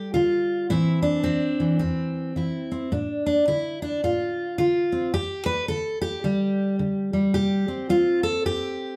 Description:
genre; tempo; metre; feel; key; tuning
folk, solo fingerstyle acoustic guitar; 108 BPM; 4/4; swing 60% on 8ths; D minor; A4 = 441 Hz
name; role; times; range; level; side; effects
fingerpicked steel-string acoustic guitar; solo; 0.0-9.0 s; E2 to B4; -24 LUFS; equal; none
room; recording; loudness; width
wet studio reverb, RT60 0.6 s; heard from further back in the room; -24 LUFS; mono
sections
0.0-9.0 A section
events
none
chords
0.0 Dm; 0.7 Am; 2.9 Dm/A; 5.1 G5; 7.3 C5

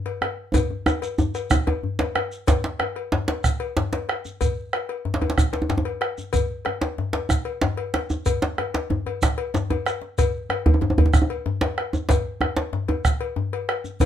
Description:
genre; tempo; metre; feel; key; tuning
west african traditional, West African drum ensemble; 125 BPM (dotted quarters); 12/8; straight; none; none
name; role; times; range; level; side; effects
cowbell; percussion; 0.1-14.1 s; none; -29 LUFS; left 7 dB; none
djembe; percussion; 0.1-14.1 s; none; -29 LUFS; left 4 dB; none
bombo; percussion; 0.2-14.1 s; none; -23 LUFS; right 2 dB; none
djembe; percussion; 0.5-14.1 s; none; -22 LUFS; right 1 dB; none
shekere; percussion; 0.5-14.1 s; none; -31 LUFS; right 2 dB; none
room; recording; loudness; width
moderate studio reverb, RT60 0.6 s; minimal, uncompressed stereo recording; -21 LUFS; side -10 dB against mid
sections
0.0-2.5 A section; 2.5-14.1 B section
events
drum fill 0.5-2.5, 9.7-10.2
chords
none

